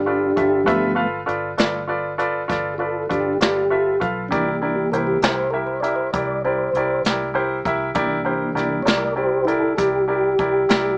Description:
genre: slow blues.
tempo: 66 BPM (dotted quarters).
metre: 12/8.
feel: straight.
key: unclear.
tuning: A4 = 440 Hz.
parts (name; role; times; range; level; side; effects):
mellow tonewheel organ; sustained chords; 0.0-11.0 s; E3 to D5; -20 LUFS; equal; slow rotary speaker.
vintage muted fingered electric bass; bass; 0.0-11.0 s; G1 to C2; -33 LUFS; equal; none.
bright upright piano; accompaniment; 0.1-10.9 s; E4 to F5; -21 LUFS; equal; none.
jazz brush drum kit; drums; 0.4-10.8 s; hi-hat, kick drum, snare drum; -22 LUFS; equal; none.
room: moderate studio reverb, RT60 0.5 s.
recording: small speaker sound.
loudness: -18 LUFS.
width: side -34 dB against mid.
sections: 0.0-11.0 A section.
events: tonewheel organ solo 0.0-11.0; upright piano fill 10.7.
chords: 0.0 G7; 4.3 C7.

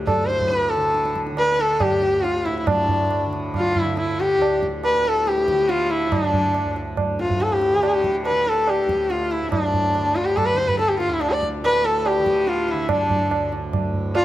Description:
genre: indian classical, Hindustani.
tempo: 141 BPM.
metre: 4/4.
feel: straight.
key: D raga bhimpalasi.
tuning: A4 = 440 Hz.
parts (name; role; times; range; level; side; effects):
tanpura; drone; 0.0-14.2 s; D2 to D3; -29 LUFS; equal; none.
rich sarangi; melody; 0.1-14.2 s; D4 to D5; -20 LUFS; left 1 dB; none.
tabla; percussion; 0.1-14.2 s; none; -25 LUFS; right 3 dB; none.
room: moderate recital hall reverb, RT60 1.6 s.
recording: none.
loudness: -18 LUFS.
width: side -14 dB against mid.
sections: 0.0-2.7 A section; 2.7-14.2 B section.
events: speeding up 0.0-14.2.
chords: none.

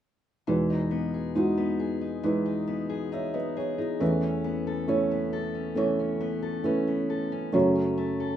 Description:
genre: pop.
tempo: 68 BPM.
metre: 4/4.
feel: straight.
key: E major.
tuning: A4 = 440 Hz.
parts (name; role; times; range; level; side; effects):
felt-muted upright piano; accompaniment; 0.5-8.4 s; E2 to E5; -26 LUFS; right 2 dB; none.
fingerpicked steel-string acoustic guitar; arpeggios; 0.5-8.4 s; F#2 to A4; -32 LUFS; left 7 dB; none.
room: wet studio reverb, RT60 0.5 s.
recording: rough home demo mix.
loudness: -25 LUFS.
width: side -10 dB against mid.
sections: 0.5-8.4 A section.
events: none.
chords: 0.5 Emaj7; 4.0 Aadd9/E; 7.5 F#m.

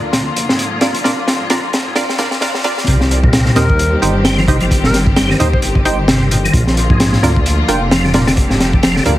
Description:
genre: breakbeat, breaks.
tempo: 131 BPM.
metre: 4/4.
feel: swing 58% on 16ths.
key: C minor.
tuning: A4 = 439 Hz.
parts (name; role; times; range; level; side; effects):
rich studio string section; sustained chords; 0.0-9.2 s; D3 to G4; -20 LUFS; left 2 dB; vintage 12-bit sampler grit, sidechain pumping.
dark detuned saw bass; bass; 0.0-9.2 s; F1 to Eb2; -17 LUFS; equal; none.
tonewheel organ; riff; 0.1-9.1 s; Ab2 to G3; -19 LUFS; equal; overdrive, chorus vibrato, fast rotary speaker, tube saturation, vintage 12-bit sampler grit, dub echo.
crunchy breakbeat drum kit; drums; 0.1-9.2 s; hi-hat, kick drum, snare drum; -15 LUFS; equal; none.
filtered dub chord stab; stabs; 0.8-9.1 s; D4 to G5; -20 LUFS; right 2 dB; analog chorus, dub echo.
mellow alto saxophone; melody; 3.6-5.6 s; Bb4 to C5; -23 LUFS; left 1 dB; AM radio sound, dub echo.
room: light reverb, studio reverb.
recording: heavily compressed radio sound, multiband compression, high-pass filter.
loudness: -11 LUFS.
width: side -14 dB against mid.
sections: 0.0-2.9 A section; 2.9-9.2 B section.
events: build-up 0.0-2.9; drum fill 0.0-2.9; filter sweep on tonewheel organ 0.0-2.9; drop 2.9-9.2.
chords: 0.0 Bb; 2.9 Cm; 6.5 Bb.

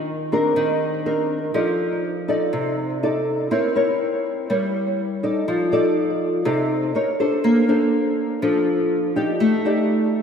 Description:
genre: bossa nova.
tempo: 122 BPM.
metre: 4/4.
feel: straight.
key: unclear.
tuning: A4 = 441 Hz.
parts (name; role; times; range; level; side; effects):
nylon-string guitar; solo; 0.0-10.2 s; C3 to D5; -18 LUFS; equal; analog chorus, tape echo.
room: wet lush hall reverb, RT60 2.8 s.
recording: dreamy mix soaked in reverb.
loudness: -18 LUFS.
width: side -7 dB against mid.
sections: 0.0-10.2 A section.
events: none.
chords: 0.0 Cm9/Eb; 1.5 F6; 3.5 C7b9; 5.5 F6; 6.9 Cm13; 7.4 Bbmaj9; 9.4 Ebmaj7#11/A.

